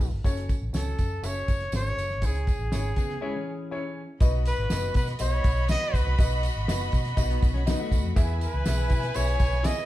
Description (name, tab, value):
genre	uptempo 1960s-style soul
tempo	121 BPM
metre	4/4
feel	straight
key	B mixolydian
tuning	A4 = 440 Hz
part	warm trumpet	melody	0.0-9.9 s	G#4 to D#5	-32 LUFS	equal	none
part	clear upright piano	accompaniment	0.0-9.9 s	B2 to E5	-35 LUFS	left 2 dB	none
part	mellow electric guitar	riff	0.0-4.1, 7.3-8.2 s	D#3 to G#4	-35 LUFS	left 6 dB	none
part	vintage muted fingered electric bass	bass	0.0-9.7 s	F#1 to C#3	-28 LUFS	equal	none
part	cloth-damped thuddy drum kit	drums	0.0-9.8 s	hi-hat, kick drum, snare drum	-25 LUFS	equal	none
part	tambourine	percussion	0.0-9.8 s	none	-42 LUFS	right 7 dB	none
part	warm studio violin section	second line	4.2-9.9 s	E4 to B5	-34 LUFS	right 1 dB	none
room	light reverb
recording	band playing live in one room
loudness	-24 LUFS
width	side -15 dB against mid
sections	0.0-4.2 A section; 4.2-9.9 B section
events	break 3.2-4.2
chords	0.2 F#m; 2.2 C#m; 4.2 B; 8.2 E